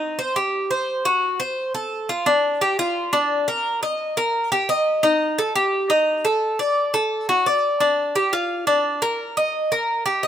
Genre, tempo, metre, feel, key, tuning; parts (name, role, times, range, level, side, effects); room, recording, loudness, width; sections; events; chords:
latin; 173 BPM; 4/4; straight; G minor; A4 = 438 Hz
Cuban tres; solo; 0.0-10.3 s; D4 to Eb5; -19 LUFS; equal
light reverb; minimal, uncompressed stereo recording; -19 LUFS; side -10 dB against mid
0.0-2.3 A section; 2.3-10.3 B section